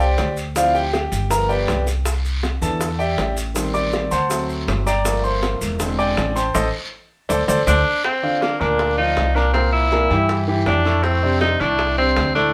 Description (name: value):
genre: Afro-Cuban jazz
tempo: 160 BPM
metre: 4/4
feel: straight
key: unclear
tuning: A4 = 440 Hz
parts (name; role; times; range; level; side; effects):
- warm concert grand piano; accompaniment; 0.0-12.5 s; A2 to D6; -23 LUFS; equal; none
- upright bass; bass; 0.0-12.5 s; E1 to G2; -25 LUFS; equal; none
- maracas; percussion; 0.0-7.8 s; none; -35 LUFS; equal; none
- bongos; percussion; 0.2-12.4 s; none; -29 LUFS; equal; none
- guiro; percussion; 0.2-12.5 s; none; -36 LUFS; equal; none
- clear tenor saxophone; melody; 7.7-12.5 s; Bb3 to E4; -22 LUFS; equal; none
room: moderate studio reverb, RT60 0.7 s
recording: band playing live in one room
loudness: -19 LUFS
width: mono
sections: 0.0-8.0 A section; 8.0-12.5 B section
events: grand piano solo 0.0-8.0; band accent 6.6-8.0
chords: 0.0 Fsus2 (rootless); 0.6 Dm7; 1.3 G7; 2.1 Cmaj9; 3.6 Am7b5; 4.3 D7; 5.1 Gm7; 5.8 E7alt; 6.6 Adim; 7.3 D5; 8.0 Cm11; 9.5 C7; 11.0 F6